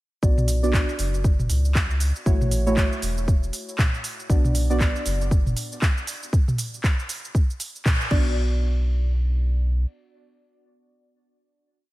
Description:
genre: afro house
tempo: 118 BPM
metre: 4/4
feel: swing 59% on 16ths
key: B minor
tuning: A4 = 440 Hz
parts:
  - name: deep mellow chord stab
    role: stabs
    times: 0.2-11.9 s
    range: A3 to D5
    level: -28 LUFS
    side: right 1 dB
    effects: chorus, sidechain pumping, tape echo
  - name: round analog bass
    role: bass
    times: 0.2-9.8 s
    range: E1 to C#2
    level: -22 LUFS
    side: equal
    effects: sidechain pumping
  - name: afro-pop drum kit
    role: drums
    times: 0.2-8.2 s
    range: crash cymbal, handclaps, hi-hat, shaker, toms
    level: -28 LUFS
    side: equal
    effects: none
  - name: electronic kick drum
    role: drums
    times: 0.2-8.2 s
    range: none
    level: -20 LUFS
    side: equal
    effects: none
room: light reverb, digital ambience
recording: none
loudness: -20 LUFS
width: side -18 dB against mid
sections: 0.2-8.4 drop; 8.4-11.9 final hit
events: drop 0.2-8.4; band accent 7.9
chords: 0.2 Bm; 2.3 A6; 4.3 Bm; 6.3 N.C.; 8.1 Bm

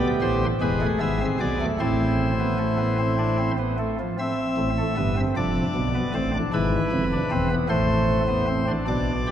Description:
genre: classical, baroque-style 4-part fugue for pipe organ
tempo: 51 BPM (dotted quarters)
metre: 6/8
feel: straight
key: A minor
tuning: A4 = 440 Hz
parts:
  - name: pipe organ, cornet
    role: solo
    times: 0.0-9.3 s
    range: E1 to E5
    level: -21 LUFS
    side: equal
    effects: none
room: wet cathedral reverb, RT60 4.4 s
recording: none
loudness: -21 LUFS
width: side -10 dB against mid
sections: 0.0-4.2 A section; 4.2-8.9 B section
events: none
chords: 0.0 Am11; 0.6 E7; 1.8 Am; 5.4 Dm/F; 6.5 E7; 7.7 Am

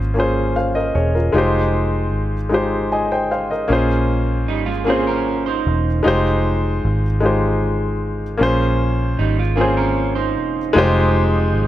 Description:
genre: R&B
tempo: 51 BPM (dotted quarters)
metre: 6/8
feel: straight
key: F minor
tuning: A4 = 440 Hz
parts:
  - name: warm baby grand piano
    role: accompaniment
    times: 0.0-11.7 s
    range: Ab3 to Ab5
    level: -18 LUFS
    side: left 1 dB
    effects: none
  - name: vintage muted fingered electric bass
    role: bass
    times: 0.0-11.7 s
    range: E1 to Bb1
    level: -20 LUFS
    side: equal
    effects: none
  - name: electric guitar at the edge of break-up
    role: second line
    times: 4.5-10.7 s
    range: G3 to C5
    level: -23 LUFS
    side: right 8 dB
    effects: none
  - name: tonewheel organ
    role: sustained chords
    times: 10.8-11.7 s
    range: C3 to G4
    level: -25 LUFS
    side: right 4 dB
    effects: overdrive, chorus vibrato, slow rotary speaker
room: light reverb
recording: none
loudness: -16 LUFS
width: side -13 dB against mid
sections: 0.0-10.8 A section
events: none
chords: 0.0 Bbm9; 1.3 Fm9; 3.7 Bbm9; 6.1 Fm9; 8.4 Bbm9; 10.8 Fm9

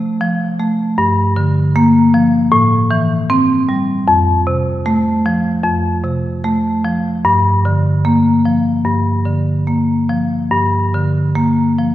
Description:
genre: classical, contemporary piece for solo marimba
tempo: 76 BPM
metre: 4/4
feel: rubato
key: unclear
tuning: A4 = 441 Hz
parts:
  - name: marimba with medium hard mallets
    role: solo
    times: 0.0-11.9 s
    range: F2 to C4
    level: -12 LUFS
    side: equal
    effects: none
room: wet scoring stage reverb, RT60 1.9 s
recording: heard from further back in the room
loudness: -12 LUFS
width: side -13 dB against mid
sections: 0.0-11.9 A section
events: none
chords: 0.0 F/C; 1.0 Gm7; 2.5 Am7; 4.1 F; 7.2 Gm7

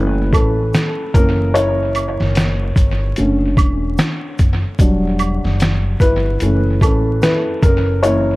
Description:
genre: lo-fi hip hop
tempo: 74 BPM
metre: 4/4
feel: swing 59% on 16ths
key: unclear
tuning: A4 = 439 Hz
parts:
  - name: dark upright piano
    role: accompaniment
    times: 0.0-8.4 s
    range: D3 to C#5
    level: -18 LUFS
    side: equal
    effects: cassette tape, low-pass filter, analog delay
  - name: upright bass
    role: bass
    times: 0.0-8.4 s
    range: E1 to A1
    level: -18 LUFS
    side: equal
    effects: none
  - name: lo-fi sampler-style drum kit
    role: drums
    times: 0.3-8.3 s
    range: hi-hat, kick drum, snare drum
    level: -16 LUFS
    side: equal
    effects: vintage 12-bit sampler grit, analog delay
  - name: egg shaker and woodblock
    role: percussion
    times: 0.3-8.3 s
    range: none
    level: -27 LUFS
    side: right 6 dB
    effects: none
room: light reverb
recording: echo-heavy mix, vinyl crackle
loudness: -13 LUFS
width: side -20 dB against mid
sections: 0.0-8.4 A section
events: upright piano solo 0.0-8.4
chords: 0.0 F#m7; 1.1 F#7; 3.2 E13sus4; 4.8 Em9; 6.4 F#m7; 7.6 F#7

